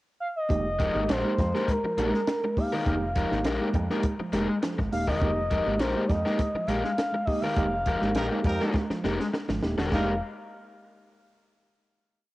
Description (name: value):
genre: funk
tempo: 102 BPM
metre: 4/4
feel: straight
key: F minor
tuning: A4 = 440 Hz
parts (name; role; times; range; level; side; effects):
- expressive portamento lead; melody; 0.2-10.2 s; Bb4 to F5; -30 LUFS; equal; chorus, cassette tape, tape echo
- tine electric piano; stabs; 0.5-10.2 s; F3 to G4; -31 LUFS; right 2 dB; medium stereo tremolo, cassette tape
- picked electric bass with an envelope filter; bass; 0.5-10.2 s; Eb1 to F2; -32 LUFS; equal; transformer saturation
- compact cocktail drum kit; drums; 0.5-10.1 s; china cymbal, hi-hat, kick drum, snare drum; -30 LUFS; equal; cassette tape
- congas; percussion; 0.5-10.2 s; none; -36 LUFS; right 2 dB; none
- crunchy overdriven guitar; accompaniment; 0.8-10.1 s; Ab3 to Bb4; -31 LUFS; left 3 dB; cassette tape
- warm horn section; second line; 8.2-10.1 s; G3 to Bb4; -35 LUFS; right 1 dB; cassette tape
room: light reverb, small room reverb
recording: home recording on cassette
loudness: -24 LUFS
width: side -18 dB against mid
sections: 0.0-0.5 pickup bar; 0.5-9.9 groove; 9.9-12.3 final chord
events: band accent 7.6-9.9; drum fill 8.7-9.9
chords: 0.0 N.C.; 0.5 Fm11